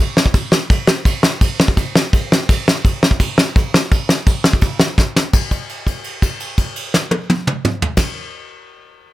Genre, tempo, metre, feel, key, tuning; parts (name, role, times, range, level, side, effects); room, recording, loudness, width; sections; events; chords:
punk; 168 BPM; 4/4; straight
soft brush drum kit; drums; 0.2-8.1 s; crash cymbal, kick drum, snare drum, toms; -14 LUFS; equal
little or no reverb; -14 LUFS; side -16 dB against mid
0.0-5.3 A section; 5.3-8.2 B section
drum fill 5.0-5.3; held note 5.3-8.0